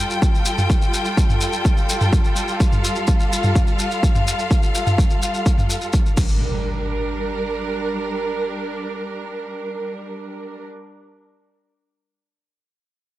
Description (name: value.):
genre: melodic techno.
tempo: 126 BPM.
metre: 4/4.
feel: straight.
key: G minor.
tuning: A4 = 440 Hz.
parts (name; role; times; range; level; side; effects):
rich studio string section; sustained chords; 0.0-10.7 s; G3 to G5; -24 LUFS; equal; sidechain pumping.
shekere; percussion; 0.1-6.4 s; none; -28 LUFS; left 1 dB; none.
electronic kick drum; drums; 0.2-6.3 s; none; -17 LUFS; equal; overdrive.
house drum kit; drums; 0.6-6.3 s; crash cymbal, toms; -23 LUFS; equal; overdrive, sidechain pumping on hats, sidechain pumping on toms, sidechain pumping on cymbals.
impact; sound effects; 6.2-10.7 s; none; -26 LUFS; equal; none.
room: light reverb.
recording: echo-heavy mix.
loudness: -18 LUFS.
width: side -15 dB against mid.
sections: 0.0-6.4 A section; 6.4-10.2 B section.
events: none.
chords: 0.0 Fadd9/G; 6.2 Gm.